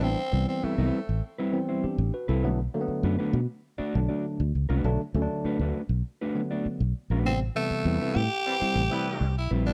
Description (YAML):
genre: funk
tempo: 100 BPM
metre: 4/4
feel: straight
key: A dorian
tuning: A4 = 440 Hz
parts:
  - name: growling tenor saxophone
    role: melody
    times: 0.0-1.2, 7.3-9.7 s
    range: A3 to G4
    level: -33 LUFS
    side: equal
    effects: none
  - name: mellow electric guitar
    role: accompaniment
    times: 0.0-9.7 s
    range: G3 to D5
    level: -33 LUFS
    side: equal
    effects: none
  - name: tine electric piano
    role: stabs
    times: 0.0-9.7 s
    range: C3 to B4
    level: -33 LUFS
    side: equal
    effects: none
  - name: fingered electric bass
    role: bass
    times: 0.0-9.7 s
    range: A1 to B2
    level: -29 LUFS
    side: equal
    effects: none
  - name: mellow horn section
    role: second line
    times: 8.5-9.3 s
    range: E3 to B4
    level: -38 LUFS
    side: equal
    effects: none
room: little or no reverb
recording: none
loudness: -28 LUFS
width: mono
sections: 0.0-9.7 A section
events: none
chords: 0.0 Am9; 2.4 Bm7; 7.3 Am9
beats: | 0.02 0.63 1.23 1.83 | 2.44 3.04 3.64 4.24 | 4.85 5.45 6.05 6.65 | 7.25 7.86 8.46 9.06 | 9.66